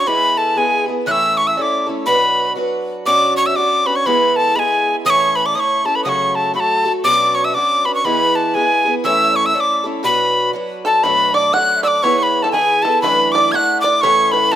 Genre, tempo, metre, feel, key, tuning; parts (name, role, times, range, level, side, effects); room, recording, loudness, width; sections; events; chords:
celtic folk, Celtic polka; 120 BPM; 2/4; swing 61% on 8ths; B dorian; A4 = 440 Hz
breathy mid whistle; melody; 0.0-14.6 s; G#5 to G#6; -14 LUFS; equal
bright baroque flute; second line; 0.0-14.6 s; G#4 to F#5; -26 LUFS; left 2 dB
picked acoustic archtop guitar; accompaniment; 0.0-14.6 s; F#2 to B4; -21 LUFS; right 1 dB
bluegrass banjo; second line; 10.8-14.6 s; G#4 to F#5; -21 LUFS; right 4 dB
light reverb, small room ambience; rough home demo mix; -13 LUFS; side -11 dB against mid
0.0-3.1 A section; 3.1-11.0 A section; 11.0-14.6 B section
0.1 E; 1.1 A; 2.1 Bm; 3.1 Bmadd9; 4.1 E; 5.1 A; 6.1 F#m; 7.0 Bmadd9; 8.0 E; 9.0 A; 10.0 Bm; 11.0 Bm7; 12.0 E; 13.0 Dadd9/F#; 14.0 A